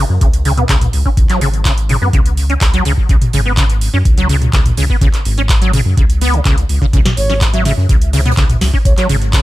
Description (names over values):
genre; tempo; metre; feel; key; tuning
acid house; 125 BPM; 4/4; straight; unclear; A4 = 441 Hz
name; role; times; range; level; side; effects
acid bass, saw; riff; 0.0-9.4 s; C#3 to C#4; -18 LUFS; equal; overdrive, ensemble chorus, sidechain pumping, ping-pong delay
round analog bass; bass; 0.0-9.4 s; G#1 to F#2; -15 LUFS; equal; sidechain pumping
booming analog drum machine; drums; 0.2-9.4 s; handclaps, hi-hat, snare drum, toms; -19 LUFS; equal; overdrive
electronic kick drum; drums; 0.2-9.4 s; none; -13 LUFS; equal; overdrive
open jazz drum kit; drums; 6.9-9.4 s; hi-hat, snare drum; -31 LUFS; right 2 dB; none
mellow hollow silver concert flute; melody; 7.2-9.1 s; C#5 to E5; -22 LUFS; right 2 dB; dub echo
room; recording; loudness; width
digital ambience; none; -10 LUFS; side -16 dB against mid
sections
0.0-9.4 A section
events
filter sweep on acid bass 0.0-9.4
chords
0.0 C#5